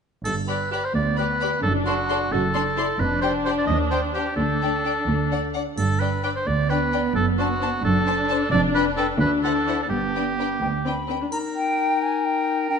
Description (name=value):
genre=cinematic, playful, whimsical film cue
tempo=87 BPM (dotted quarters)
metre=6/8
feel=straight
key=G major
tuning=A4 = 437 Hz
part: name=clear oboe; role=second line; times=0.2-12.8 s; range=F#4 to Eb5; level=-25 LUFS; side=right 1 dB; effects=none
part: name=rich studio cello section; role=bass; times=0.3-11.2 s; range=D2 to G2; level=-27 LUFS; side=right 2 dB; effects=none
part: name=rich studio double bass section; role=bass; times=0.3-11.2 s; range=F1 to Eb2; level=-28 LUFS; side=right 4 dB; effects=none
part: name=triangle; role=percussion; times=0.3-1.1, 5.8-6.7, 11.3-12.2 s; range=none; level=-42 LUFS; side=equal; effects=none
part: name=rich studio violin section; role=melody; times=0.5-11.2 s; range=F#5 to C6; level=-33 LUFS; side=left 3 dB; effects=none
part: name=rich studio violin section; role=second line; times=0.5-11.2 s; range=D4 to D5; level=-30 LUFS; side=left 5 dB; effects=none
part: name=warm studio viola section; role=accompaniment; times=0.9-11.3 s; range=B3 to F#4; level=-27 LUFS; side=left 1 dB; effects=none
part: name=silver concert flute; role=second line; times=10.6-12.8 s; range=G5 to B5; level=-24 LUFS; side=left 2 dB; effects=none
part: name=bright clarinet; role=second line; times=11.3-12.8 s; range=D4 to Eb4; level=-27 LUFS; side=left 8 dB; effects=none
room=moderate scoring stage reverb, RT60 1.4 s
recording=nothing above 10.4 kHz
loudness=-20 LUFS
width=side -6 dB against mid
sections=0.3-11.3 A section; 11.3-12.8 B section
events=none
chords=0.3 G; 1.6 D7/F#; 3.0 G5/F; 3.7 Cm/Eb; 4.4 Dsus4; 5.8 G; 7.2 D7/F#; 8.5 G7/F; 9.2 D9; 9.9 G; 11.3 Eb